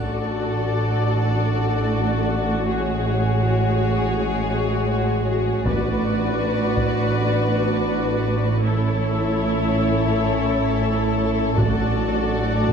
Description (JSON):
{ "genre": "cinematic, epic orchestral film score", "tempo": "81 BPM (dotted quarters)", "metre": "12/8", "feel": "straight", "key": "unclear", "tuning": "A4 = 441 Hz", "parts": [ { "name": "dark studio violin section", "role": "melody", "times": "0.0-12.7 s", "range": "C#5 to D5", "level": "-30 LUFS", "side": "left 2 dB", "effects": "none" }, { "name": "warm symphonic violin section", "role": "second line", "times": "0.0-12.7 s", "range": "G#4 to B4", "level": "-28 LUFS", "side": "left 4 dB", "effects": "none" }, { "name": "rich symphonic viola section", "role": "accompaniment", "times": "0.0-12.7 s", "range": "E4 to F#4", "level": "-28 LUFS", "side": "left 1 dB", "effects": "none" }, { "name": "warm French horn section", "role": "sustained chords", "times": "0.0-12.7 s", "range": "F#3 to F#4", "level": "-27 LUFS", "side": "left 4 dB", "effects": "none" }, { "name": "rich symphonic double bass section", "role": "bass", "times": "0.0-12.7 s", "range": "A1", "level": "-25 LUFS", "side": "right 3 dB", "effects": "none" }, { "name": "warm symphonic cello section", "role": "bass", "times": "0.0-12.7 s", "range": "A2", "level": "-25 LUFS", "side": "right 3 dB", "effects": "none" }, { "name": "taiko ensemble", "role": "drums", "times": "5.7-7.0, 11.6-12.7 s", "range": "none", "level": "-25 LUFS", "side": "equal", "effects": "none" } ], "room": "wet scoring stage reverb, RT60 1.7 s", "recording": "dark, warm production", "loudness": "-19 LUFS", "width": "side -6 dB against mid", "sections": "0.0-12.7 A section", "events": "build-up 0.0-12.7", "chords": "0.0 D/A; 2.7 F#madd9/A; 5.7 Bm/A; 8.6 A; 11.6 D/A" }